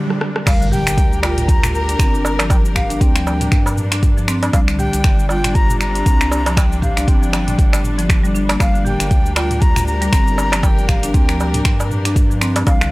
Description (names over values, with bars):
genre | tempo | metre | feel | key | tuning
afro house | 118 BPM | 4/4 | swing 57% on 16ths | G minor | A4 = 440 Hz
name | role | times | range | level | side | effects
rich symphonic string section | sustained chords | 0.0-12.9 s | C3 to Bb4 | -26 LUFS | left 2 dB | sidechain pumping
afro-pop drum kit | drums | 0.1-12.9 s | cabasa, crash cymbal, finger snaps, hi-hat, rim click, toms | -22 LUFS | equal | small room ambience
breathy jazz flute | melody | 0.5-12.9 s | F5 to Bb5 | -24 LUFS | left 1 dB | tape echo
marimba with medium hard mallets | arpeggios | 0.5-12.9 s | D3 to G4 | -22 LUFS | equal | sidechain pumping, tape echo
round analog bass | bass | 0.5-12.9 s | G1 to G2 | -21 LUFS | equal | sidechain pumping, high-pass filter
electronic kick drum | drums | 0.5-12.8 s | none | -15 LUFS | equal | small room ambience
darbuka | percussion | 0.5-12.8 s | none | -22 LUFS | right 2 dB | none
impact | sound effects | 0.5-2.5 s | none | -26 LUFS | right 1 dB | none
room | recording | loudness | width
little or no reverb | dry, gritty hardware recording | -13 LUFS | side -21 dB against mid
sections
0.5-12.9 A section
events
break 0.0-0.5; drum fill 0.1-0.5; drop 0.5-12.9; impact 0.5-2.5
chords
0.5 Gm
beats
| 0.47 0.98 1.48 1.99 | 2.50 3.01 3.52 4.03 | 4.54 5.04 5.55 6.06 | 6.57 7.08 7.59 8.09 | 8.60 9.11 9.62 10.13 | 10.64 11.14 11.65 12.16 | 12.67